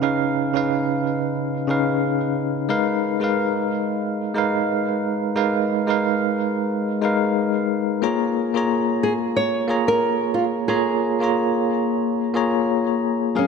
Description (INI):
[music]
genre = chillout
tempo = 90 BPM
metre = 4/4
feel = swing 58% on 16ths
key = unclear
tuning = A4 = 441 Hz
[part]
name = bell-like tine electric piano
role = accompaniment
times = 0.0-13.5 s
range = C#3 to A#5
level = -20 LUFS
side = moving between left 6 dB and right 6 dB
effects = fast stereo tremolo, auto-pan, ping-pong delay
[part]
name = nylon-string guitar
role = melody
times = 9.0-13.5 s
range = C#4 to C#5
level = -23 LUFS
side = equal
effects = ping-pong delay
[sound]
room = moderate lush hall reverb, RT60 2.5 s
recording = none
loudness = -19 LUFS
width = side -5 dB against mid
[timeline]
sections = 0.0-13.5 A section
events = none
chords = 0.0 C#7; 2.7 G#m69; 8.0 A#m7